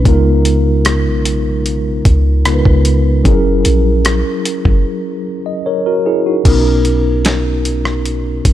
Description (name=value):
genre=contemporary R&B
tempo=75 BPM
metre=4/4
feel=straight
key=unclear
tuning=A4 = 440 Hz
part: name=mellow tine electric piano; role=accompaniment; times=0.0-8.5 s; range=B2 to D#5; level=-15 LUFS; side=equal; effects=medium stereo tremolo
part: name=warm 808-style bass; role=bass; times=0.0-8.5 s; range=F#1 to C#2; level=-14 LUFS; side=equal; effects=none
part: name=dusty soul sampler-style drum kit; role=drums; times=0.1-8.5 s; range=crash cymbal, hi-hat, kick drum, rim click, snare drum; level=-15 LUFS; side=equal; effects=none
room=little or no reverb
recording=none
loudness=-11 LUFS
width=side -12 dB against mid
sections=0.0-6.5 A section; 6.5-8.5 B section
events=break 4.9-6.5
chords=0.1 C#13; 3.3 F#7; 6.5 Bmaj7